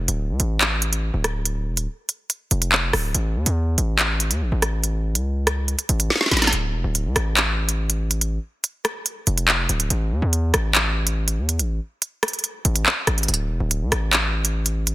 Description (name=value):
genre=hip hop, drill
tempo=142 BPM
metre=4/4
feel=half-time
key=D harmonic minor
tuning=A4 = 436 Hz
part: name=distorted 808-style bass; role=bass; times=0.0-14.9 s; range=D1 to E2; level=-22 LUFS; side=equal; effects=distortion
part: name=drill drum kit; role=drums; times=0.1-14.9 s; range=handclaps, hi-hat, rim click, snare drum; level=-20 LUFS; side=equal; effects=none
room=little or no reverb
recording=dense, heavily limited modern master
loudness=-19 LUFS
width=side -16 dB against mid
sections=0.0-6.5 A section; 6.5-14.9 B section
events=drum fill 6.1-6.5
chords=none